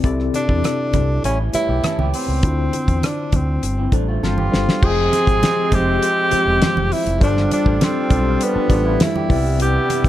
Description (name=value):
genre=lush 1970s-style soul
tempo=100 BPM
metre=4/4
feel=straight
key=unclear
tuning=A4 = 440 Hz
part: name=tine electric piano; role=accompaniment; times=0.0-10.1 s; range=C3 to G5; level=-23 LUFS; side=left 4 dB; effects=medium stereo tremolo
part: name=electric guitar through a small old amp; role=riff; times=0.0-4.8, 8.6-9.4 s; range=E3 to A4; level=-29 LUFS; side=right 5 dB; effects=none
part: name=overdriven fingered electric bass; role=bass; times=0.0-10.1 s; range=E1 to E2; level=-21 LUFS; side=equal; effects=none
part: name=damped 70s drum kit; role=drums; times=0.0-10.1 s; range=crash cymbal, hi-hat, kick drum, rim click, snare drum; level=-20 LUFS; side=equal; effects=none
part: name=congas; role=percussion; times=0.3-10.0 s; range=none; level=-28 LUFS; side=right 4 dB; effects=none
part: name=breathy tenor saxophone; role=melody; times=0.4-10.1 s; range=B3 to Ab4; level=-20 LUFS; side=right 1 dB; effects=none
part: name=mellow French horn section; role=sustained chords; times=4.8-10.1 s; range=E3 to B4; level=-29 LUFS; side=right 3 dB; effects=stereo widening
part: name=mellow horn section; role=stabs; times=4.8-10.1 s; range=C3 to F4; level=-27 LUFS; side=right 4 dB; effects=none
room=light reverb, small room reverb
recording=dark, warm production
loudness=-15 LUFS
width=side -13 dB against mid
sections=0.0-4.8 A section; 4.8-10.1 B section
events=drum fill 4.2-4.8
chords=0.0 C6; 1.2 A7; 2.4 Dm7; 3.6 G7sus4; 4.8 Fmadd9; 7.2 G7sus4; 9.3 Cmaj9